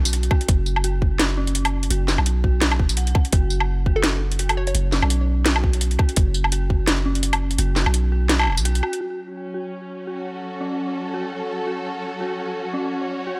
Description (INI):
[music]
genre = half-time drum and bass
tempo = 169 BPM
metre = 4/4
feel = swing 57% on 16ths, half-time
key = F# minor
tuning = A4 = 438 Hz
[part]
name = dark detuned synth bell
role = arpeggios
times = 0.0-13.4 s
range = C#4 to F#5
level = -32 LUFS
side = equal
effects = chorus, tremolo, low-pass filter, delay
[part]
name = long sustained 808-style bass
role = bass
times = 0.0-8.8 s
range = E1 to B1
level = -24 LUFS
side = equal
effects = none
[part]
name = drum and bass drum kit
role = drums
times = 0.1-9.0 s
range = hi-hat, snare drum, tambourine, woodblock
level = -25 LUFS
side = equal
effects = low-pass filter on hats, low-pass filter on cymbals, low-pass filter on perc, low-pass filter on snare, low-pass filter on room
[part]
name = electronic kick drum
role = drums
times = 0.3-6.8 s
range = none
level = -21 LUFS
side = equal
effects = none
[part]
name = hollow square pluck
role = melody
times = 4.0-4.7 s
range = A4 to C#5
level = -33 LUFS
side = equal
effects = chorus, delay
[part]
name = warm symphonic string section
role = sustained chords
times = 9.0-13.4 s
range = F#3 to C#5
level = -30 LUFS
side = equal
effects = vintage 12-bit sampler grit, sidechain pumping
[sound]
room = light reverb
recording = none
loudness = -22 LUFS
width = mono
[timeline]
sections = 0.0-9.0 A section; 9.0-13.4 B section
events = kick drops out 7.6-9.0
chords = 0.0 F#5; 9.0 F#m